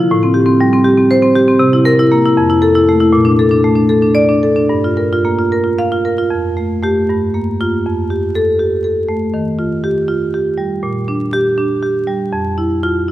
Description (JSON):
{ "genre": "classical, contemporary piece for solo marimba", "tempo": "80 BPM (dotted quarters)", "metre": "6/8", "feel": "rubato", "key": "unclear", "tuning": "A4 = 440 Hz", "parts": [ { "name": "marimba with medium hard mallets", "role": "solo", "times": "0.0-13.1 s", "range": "F2 to F5", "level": "-11 LUFS", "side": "equal", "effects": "none" } ], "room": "moderate concert hall reverb, RT60 2.0 s", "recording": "vinyl crackle", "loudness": "-11 LUFS", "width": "side -14 dB against mid", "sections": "0.0-6.3 A section; 6.3-13.1 B section", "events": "none", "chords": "0.1 Am7; 1.6 C7; 2.4 Fmaj7; 3.1 Bbmaj7; 4.7 Gm7; 6.3 Fadd9; 7.1 Gm7; 7.8 Fadd9; 9.3 Ebadd9; 10.8 Bb6; 12.3 N.C.", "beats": "| 0.12 0.86 | 1.61 2.36 | 3.12 3.90 | 4.70 5.52 | 6.32 7.08 | 7.84 8.59 | 9.34 10.10 | 10.84 11.58 | 12.32 13.06" }